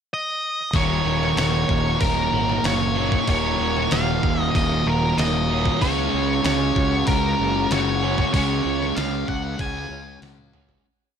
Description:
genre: rock, shoegaze and dream pop.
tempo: 95 BPM.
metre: 4/4.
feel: straight.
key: Eb minor.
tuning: A4 = 440 Hz.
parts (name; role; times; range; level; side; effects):
octave-fuzz lead guitar; melody; 0.1-10.2 s; Bb4 to Ab5; -25 LUFS; equal; distortion, analog delay.
electric guitar through a small old amp; arpeggios; 0.7-10.9 s; Eb2 to Gb4; -32 LUFS; left 1 dB; ensemble chorus, analog delay.
fuzz guitar; riff; 0.7-10.8 s; Eb2 to Db4; -25 LUFS; left 9 dB; distortion, analog chorus.
overdriven semi-hollow guitar; riff; 0.7-10.8 s; Eb2 to Ab4; -26 LUFS; right 13 dB; reverse reverb.
fuzz fingered electric bass; bass; 0.7-10.7 s; Eb1 to Db2; -27 LUFS; equal; overdrive.
detuned 8-bit digital drum machine; drums; 0.7-10.8 s; hi-hat, kick drum, snare drum, toms; -25 LUFS; equal; none.
room: light reverb.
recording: none.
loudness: -19 LUFS.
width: side -7 dB against mid.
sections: 0.0-0.7 pickup bar; 0.7-10.9 verse.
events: fade-out 8.3-10.9; drum fill 10.2-10.9.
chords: 0.0 N.C.; 0.7 Ebm7; 5.8 Dbsus4.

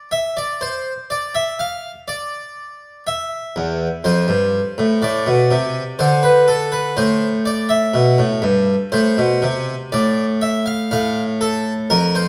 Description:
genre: classical, baroque-style two-part invention for harpsichord.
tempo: 61 BPM.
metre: 4/4.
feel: straight.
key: unclear.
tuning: A4 = 440 Hz.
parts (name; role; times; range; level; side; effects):
harpsichord; solo; 0.0-12.3 s; E2 to F5; -18 LUFS; equal; none.
room: moderate recital hall reverb, RT60 1.4 s.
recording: none.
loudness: -18 LUFS.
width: mono.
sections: 0.0-12.3 A section.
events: none.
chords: 0.0 N.C.; 3.1 Am/E (rootless); 5.0 D5/A; 7.0 Am; 10.9 Dm/A (rootless).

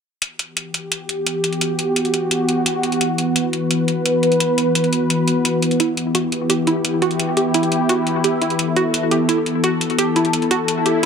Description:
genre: dark technical drum and bass.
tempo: 172 BPM.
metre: 4/4.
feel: straight.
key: E minor.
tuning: A4 = 440 Hz.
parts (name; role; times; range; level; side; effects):
sweeping resonant pad; sustained chords; 0.2-11.1 s; E3 to B4; -18 LUFS; left 1 dB; lush chorus.
electronic hi-hat; drums; 0.2-11.1 s; none; -23 LUFS; equal; none.
warbly dusty pluck; arpeggios; 5.8-11.1 s; E4 to G4; -20 LUFS; right 2 dB; chorus, ping-pong delay.
swell; sound effects; 10.8-11.1 s; none; -20 LUFS; left 3 dB; none.
room: moderate lush hall reverb, RT60 2.2 s.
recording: none.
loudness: -16 LUFS.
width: side -6 dB against mid.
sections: 0.2-11.1 A section.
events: swell 10.8-11.1.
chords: 0.2 Em.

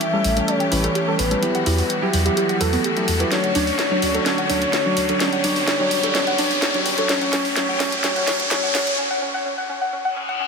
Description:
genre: progressive house.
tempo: 127 BPM.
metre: 4/4.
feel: straight.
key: unclear.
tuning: A4 = 444 Hz.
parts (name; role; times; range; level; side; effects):
soft octave-layered synth lead; melody; 0.0-9.0 s; A4 to E5; -25 LUFS; left 2 dB; chorus, ping-pong delay.
bright studio string section; sustained chords; 0.0-9.0 s; D3 to G4; -27 LUFS; left 1 dB; none.
house drum kit; drums; 0.0-9.0 s; hi-hat, snare drum; -25 LUFS; equal; none.
riser and reverse cymbal; sound effects; 0.0-10.5 s; none; -26 LUFS; equal; none.
deep mellow chord stab; stabs; 0.1-8.9 s; F#3 to C#5; -24 LUFS; right 2 dB; chorus, ping-pong delay.
saturated sub bass; bass; 0.2-8.9 s; G1 to E2; -25 LUFS; equal; none.
soft round pluck; arpeggios; 0.4-10.5 s; B3 to G5; -27 LUFS; equal; chorus, ping-pong delay.
room: moderate huge ambient reverb, RT60 6.4 s.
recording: dense, heavily limited modern master, high-pass filter.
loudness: -18 LUFS.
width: side -5 dB against mid.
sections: 0.0-10.5 A section.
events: build-up 0.0-10.5; riser 0.0-9.0; filter sweep 0.0-10.5; drum fill 3.3-9.0; break 9.0-10.5; reverse cymbal 9.9-10.5.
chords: 0.0 A7; 1.4 Emadd9; 3.3 Dmaj7; 5.2 G; 7.1 A7; 9.0 C#sus4.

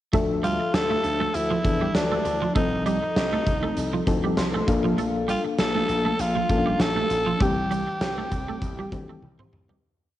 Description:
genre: 1980s-style pop.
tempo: 99 BPM.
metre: 4/4.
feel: swing 55% on 16ths.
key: unclear.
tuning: A4 = 440 Hz.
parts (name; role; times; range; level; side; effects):
FM electric piano with tremolo; accompaniment; 0.1-9.9 s; D3 to C6; -27 LUFS; left 4 dB; tube saturation.
twelve-string electric guitar; riff; 0.1-9.8 s; F3 to C4; -30 LUFS; right 5 dB; ensemble chorus.
slap bass with an envelope filter; bass; 0.1-9.7 s; Bb1 to E2; -32 LUFS; equal; none.
big rock drum kit; drums; 0.1-9.8 s; hi-hat, kick drum, snare drum, toms; -28 LUFS; right 1 dB; cassette tape.
growling tenor saxophone; melody; 0.4-9.2 s; D4 to A4; -27 LUFS; equal; cassette tape.
room: light reverb, small room ambience.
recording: home recording on cassette, nothing above 10.3 kHz.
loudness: -21 LUFS.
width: side -13 dB against mid.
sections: 0.1-9.8 verse.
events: FM electric piano fill 4.1-5.0; fade-out 7.4-9.8; drum fill 9.2-9.8.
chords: 0.1 Dmadd9; 2.6 F7/C; 4.7 Bbmaj7; 7.4 C.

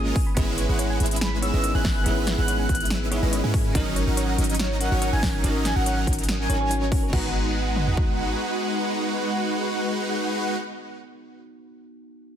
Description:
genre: future bass.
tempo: 142 BPM.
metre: 4/4.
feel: half-time.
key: G# minor.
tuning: A4 = 441 Hz.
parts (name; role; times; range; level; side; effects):
bell-like tine electric piano; accompaniment; 0.0-12.4 s; A#3 to A#5; -32 LUFS; equal; sidechain pumping, digital delay.
thumb-piano-like synth pluck; arpeggios; 0.0-7.3 s; F#4 to B5; -37 LUFS; right 2 dB; chorus, sidechain pumping, digital delay.
supersaw chords; riff; 0.0-10.6 s; F#3 to G#5; -27 LUFS; equal; lush chorus, sidechain pumping, digital delay.
warm 808-style bass; bass; 0.0-8.4 s; G#1 to G#2; -25 LUFS; equal; sidechain pumping.
big-room dance drum kit; drums; 0.2-8.1 s; kick drum, toms; -24 LUFS; equal; overdrive.
big-room dance drum kit; drums; 0.2-7.2 s; crash cymbal, hi-hat, snare drum; -30 LUFS; equal; overdrive.
breathy flute-like synth lead; melody; 1.2-6.7 s; C#5 to F#6; -31 LUFS; equal; analog chorus, sidechain pumping, dub echo.
room: light reverb, digital ambience.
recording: dense, heavily limited modern master.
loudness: -21 LUFS.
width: side -9 dB against mid.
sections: 0.0-7.1 A section; 7.1-10.5 B section.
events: drop 0.0-7.1.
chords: 0.2 C#m7/G#; 3.7 D#m7/G#; 7.1 G#m7.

